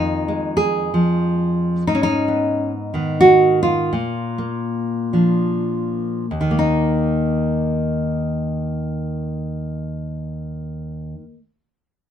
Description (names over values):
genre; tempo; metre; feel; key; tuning
folk, solo fingerstyle acoustic guitar; 69-91 BPM; 3/4; swing 59% on 8ths; unclear; A4 = 440 Hz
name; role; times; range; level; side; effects
nylon-string guitar; solo; 0.0-11.4 s; Eb2 to Ab4; -18 LUFS; equal; none
room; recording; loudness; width
moderate studio reverb, RT60 0.6 s; minimal, uncompressed stereo recording; -17 LUFS; side -9 dB against mid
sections
0.0-6.3 A section; 6.3-11.5 B section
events
slowing down 1.9-6.3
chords
0.0 Fm7; 1.9 Abm; 3.9 Bb; 6.3 Eb5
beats
0.54 1.20 | 1.87 2.53 3.21 | 3.92 4.66 5.44 | 6.28 7.16 8.03 | 8.91 9.78 10.66